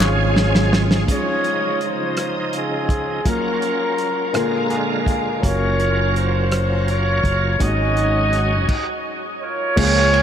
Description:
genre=slow gospel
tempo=55 BPM (dotted quarters)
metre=6/8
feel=straight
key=Db major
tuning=A4 = 441 Hz
part: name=clear horn section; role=melody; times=0.0-10.2 s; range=C4 to Eb5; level=-21 LUFS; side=equal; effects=ping-pong delay
part: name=warm concert grand piano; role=accompaniment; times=0.0-10.2 s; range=Ab2 to Ab5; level=-25 LUFS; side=left 2 dB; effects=lush chorus
part: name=bright tonewheel organ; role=sustained chords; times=0.0-10.2 s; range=Db3 to Eb5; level=-25 LUFS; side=right 3 dB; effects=slow rotary speaker, chorus vibrato
part: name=fingered electric bass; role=bass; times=0.0-1.0, 5.4-10.2 s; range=Gb1 to Db2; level=-20 LUFS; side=equal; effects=none
part: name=warm soul drum kit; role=drums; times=0.0-10.2 s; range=crash cymbal, hi-hat, kick drum, ride cymbal, rim click, snare drum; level=-22 LUFS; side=equal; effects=none
room=moderate huge ambient reverb, RT60 4.9 s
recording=dreamy mix soaked in reverb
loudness=-17 LUFS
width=side -9 dB against mid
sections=0.0-1.1 A section; 1.1-9.8 B section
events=drum fill 0.0-1.1; grand piano fill 4.3-5.4; stop 8.7-9.8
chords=0.0 Db; 1.1 Dbmaj9; 3.3 Gbmaj7; 4.3 Bb7; 5.4 Gbmaj7; 7.6 Ab7sus4

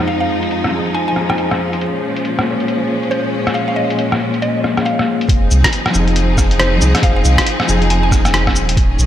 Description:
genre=future garage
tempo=138 BPM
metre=4/4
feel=swing 62% on 16ths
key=F minor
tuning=A4 = 440 Hz
part: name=felt-muted upright piano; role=accompaniment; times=0.0-8.8 s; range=F3 to F5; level=-22 LUFS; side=left 2 dB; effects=sidechain pumping, tape echo
part: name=clear symphonic string section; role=sustained chords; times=0.0-9.1 s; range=F2 to Ab4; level=-19 LUFS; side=left 1 dB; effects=vintage 12-bit sampler grit, sidechain pumping
part: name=mallet-like synth pluck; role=melody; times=0.1-8.8 s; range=C5 to Ab5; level=-23 LUFS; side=equal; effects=chorus, analog delay
part: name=lo-fi sampler-style drum kit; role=drums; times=0.1-9.1 s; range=cabasa, hi-hat, rim click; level=-20 LUFS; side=equal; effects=low-pass filter on hats, low-pass filter on snare, low-pass filter on perc
part: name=warm sub bass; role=bass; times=5.3-9.1 s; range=Eb1 to C2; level=-14 LUFS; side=equal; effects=tube saturation, sidechain pumping
part: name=electronic kick drum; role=drums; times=5.3-8.9 s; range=none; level=-15 LUFS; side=equal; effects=none
room=wet lush hall reverb, RT60 1.9 s, digital ambience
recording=dreamy mix soaked in reverb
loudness=-13 LUFS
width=side -11 dB against mid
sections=0.0-5.3 A section; 5.3-9.1 B section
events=filter sweep on string section 0.0-5.3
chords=0.0 Fm7; 1.8 Bbm7; 5.3 Fm7

